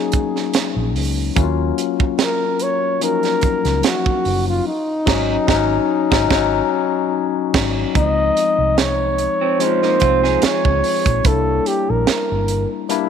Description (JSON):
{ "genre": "lush 1970s-style soul", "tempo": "73 BPM", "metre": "4/4", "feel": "swing 54% on 16ths", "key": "unclear", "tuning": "A4 = 440 Hz", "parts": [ { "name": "breathy flugelhorn", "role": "melody", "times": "0.0-12.7 s", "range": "Eb4 to Eb5", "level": "-20 LUFS", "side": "right 1 dB", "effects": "none" }, { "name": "barky tine electric piano", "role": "accompaniment", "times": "0.0-13.1 s", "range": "Fb3 to F4", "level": "-21 LUFS", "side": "left 13 dB", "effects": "none" }, { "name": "tight funk drum kit", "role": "drums", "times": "0.1-13.1 s", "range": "crash cymbal, hi-hat, kick drum, snare drum", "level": "-20 LUFS", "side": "right 4 dB", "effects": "none" }, { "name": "vintage muted fingered electric bass", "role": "bass", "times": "0.8-12.6 s", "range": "Gb1 to Eb2", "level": "-22 LUFS", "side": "right 1 dB", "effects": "none" }, { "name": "electric guitar through a small old amp", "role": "riff", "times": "9.4-11.2 s", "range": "F3 to Ab4", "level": "-22 LUFS", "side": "right 15 dB", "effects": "none" } ], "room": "light reverb, small room ambience", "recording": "1960s-style stereo with parts hard left and right", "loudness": "-15 LUFS", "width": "side -7 dB against mid", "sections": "0.0-8.0 A section; 8.0-13.1 B section", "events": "band accent 4.7-8.0; tine electric piano fill 12.9", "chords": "0.0 Ab7sus4; 1.4 Ebm9; 4.7 Ab7sus4; 8.0 Dbmaj7; 11.2 C7", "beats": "0.54 | 1.37 2.19 3.02 3.84 | 4.66 5.49 6.31 7.13 | 7.96 8.78 9.60 10.43 | 11.25 12.07 12.90" }